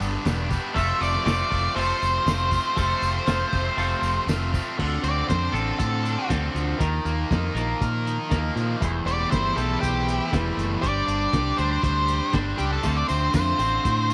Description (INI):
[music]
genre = indie rock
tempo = 119 BPM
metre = 4/4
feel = straight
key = unclear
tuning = A4 = 440 Hz
[part]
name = distorted electric guitar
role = riff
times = 0.0-14.1 s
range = E2 to C5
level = -31 LUFS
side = equal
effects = overdrive
[part]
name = twangy electric guitar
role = riff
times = 0.0-14.1 s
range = E2 to C5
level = -33 LUFS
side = equal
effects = lush chorus, slapback echo
[part]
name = fingered electric bass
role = bass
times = 0.0-14.1 s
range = E1 to Bb2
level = -29 LUFS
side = equal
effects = none
[part]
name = cloth-damped thuddy drum kit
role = drums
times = 0.0-14.1 s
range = crash cymbal, hi-hat, kick drum, snare drum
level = -31 LUFS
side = equal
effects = none
[part]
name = tambourine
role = percussion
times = 0.0-4.7, 12.8-14.1 s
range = none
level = -48 LUFS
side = equal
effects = none
[part]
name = octave-fuzz lead guitar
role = melody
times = 0.8-14.1 s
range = G4 to E5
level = -28 LUFS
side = equal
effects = distortion, slapback echo
[sound]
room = light reverb, small room ambience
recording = none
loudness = -24 LUFS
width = mono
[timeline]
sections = 0.0-4.8 A section; 4.8-14.1 B section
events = lead electric guitar solo 4.8-14.1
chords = 0.0 G; 0.8 F; 4.8 Dm7; 6.8 Ebsus2; 8.8 C6/E; 10.8 Gsus4; 12.8 Dm7